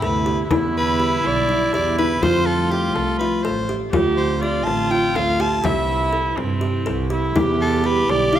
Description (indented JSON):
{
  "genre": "contemporary instrumental, chamber music in an uneven meter",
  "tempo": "245 BPM (eighths)",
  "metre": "7/8",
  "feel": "straight",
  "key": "unclear",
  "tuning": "A4 = 438 Hz",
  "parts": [
    { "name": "raspy soprano saxophone", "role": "melody", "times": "0.0-8.4 s", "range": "G4 to A5", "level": "-23 LUFS", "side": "left 2 dB", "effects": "none" },
    { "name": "warm viola", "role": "second line", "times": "0.0-8.4 s", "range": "C4 to G4", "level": "-23 LUFS", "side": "right 2 dB", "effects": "none" },
    { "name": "evolving wavetable pad", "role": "sustained chords", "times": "0.0-8.4 s", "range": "C3 to B4", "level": "-29 LUFS", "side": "left 2 dB", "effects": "phaser, built-in reverb" },
    { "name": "kalimba", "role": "arpeggios", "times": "0.0-8.4 s", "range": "E4 to A4", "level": "-24 LUFS", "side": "equal", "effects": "none" },
    { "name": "rich double bass", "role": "bass", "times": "0.0-8.3 s", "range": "A1 to G2", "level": "-24 LUFS", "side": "right 3 dB", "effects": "none" },
    { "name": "frame drum", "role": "percussion", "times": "0.0-8.4 s", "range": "none", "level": "-26 LUFS", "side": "left 4 dB", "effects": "none" }
  ],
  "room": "moderate recital hall reverb, RT60 1.4 s",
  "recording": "none",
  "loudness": "-17 LUFS",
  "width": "side -10 dB against mid",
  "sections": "0.0-8.4 A section",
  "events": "none",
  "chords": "0.0 Cmaj7; 0.5 Em7; 2.2 F; 3.9 Dm7; 5.6 Cmaj7; 7.4 Em7"
}